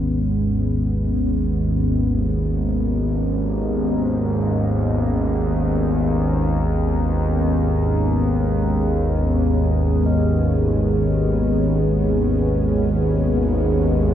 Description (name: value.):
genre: dark ambient drone.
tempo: free time.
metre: none.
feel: none.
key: G# minor.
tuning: A4 = 439 Hz.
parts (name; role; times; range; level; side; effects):
sweeping resonant pad; sustained chords; 0.0-14.1 s; G#3 to C#4; -22 LUFS; equal; chorus.
analog drone; drone; 0.0-14.1 s; G#1 to D#2; -19 LUFS; equal; chorus.
quartz singing bowl; texture; 0.0-14.1 s; B4 to D#5; -36 LUFS; left 1 dB; none.
room: moderate spring reverb, RT60 2.8 s.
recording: none.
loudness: -18 LUFS.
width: side -10 dB against mid.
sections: 0.0-14.1 A section.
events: fade-in on singing bowl 0.0-14.1.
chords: 0.0 G#m.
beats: free time.